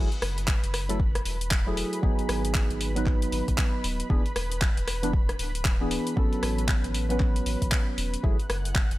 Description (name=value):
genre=deep house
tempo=116 BPM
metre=4/4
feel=swing 61% on 16ths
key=F# dorian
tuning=A4 = 439 Hz
part: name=percussive organ stab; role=stabs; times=0.0-8.4 s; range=E3 to B4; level=-31 LUFS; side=right 1 dB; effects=wide subtle chorus, vintage 12-bit sampler grit, sidechain pumping, analog delay
part: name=round analog bass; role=bass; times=0.0-9.0 s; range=D1 to A1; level=-31 LUFS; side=equal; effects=sidechain pumping
part: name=analog string pad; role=texture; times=0.0-9.0 s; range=B4 to F#6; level=-40 LUFS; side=equal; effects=ensemble chorus, sidechain pumping
part: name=deep house drum kit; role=drums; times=0.1-9.0 s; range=handclaps, hi-hat, rim click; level=-31 LUFS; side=equal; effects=overdrive
part: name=electronic kick drum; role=drums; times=0.5-8.9 s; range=none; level=-25 LUFS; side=equal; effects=overdrive
room=digital ambience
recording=none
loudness=-24 LUFS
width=side -17 dB against mid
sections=0.0-9.0 A section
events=none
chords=0.0 F#m9; 2.0 G#m7; 4.1 E7; 6.2 A69; 8.2 F#m9